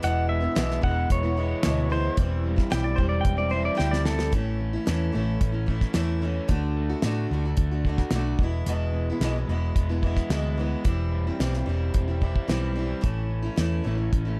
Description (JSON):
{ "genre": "folk rock and heartland rock", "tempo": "110 BPM", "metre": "4/4", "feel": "straight", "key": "unclear", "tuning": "A4 = 441 Hz", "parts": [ { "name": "pedal steel guitar", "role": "melody", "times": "0.0-4.3 s", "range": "A4 to G5", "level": "-31 LUFS", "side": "equal", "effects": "analog delay" }, { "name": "picked acoustic archtop guitar", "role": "accompaniment", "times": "0.0-14.4 s", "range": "E2 to F#4", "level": "-33 LUFS", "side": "equal", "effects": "none" }, { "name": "crunchy overdriven guitar", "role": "riff", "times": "0.0-14.4 s", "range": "E2 to F#4", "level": "-36 LUFS", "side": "equal", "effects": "spring reverb" }, { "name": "hollow-body short-scale picked electric bass", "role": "bass", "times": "0.0-14.4 s", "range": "E1 to A2", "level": "-29 LUFS", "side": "equal", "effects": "none" }, { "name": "damped 70s drum kit", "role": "drums", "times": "0.0-14.3 s", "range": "hi-hat, kick drum, snare drum", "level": "-28 LUFS", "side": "equal", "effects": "none" } ], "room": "light reverb", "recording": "dark, warm production", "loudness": "-25 LUFS", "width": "mono", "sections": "0.0-4.3 A section; 4.3-14.4 B section", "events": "pedal steel guitar solo 0.0-4.3; drum fill 3.8-4.3", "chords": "0.0 E; 2.2 C/E; 4.3 A; 6.5 D; 8.4 E; 10.9 C/E; 13.0 A" }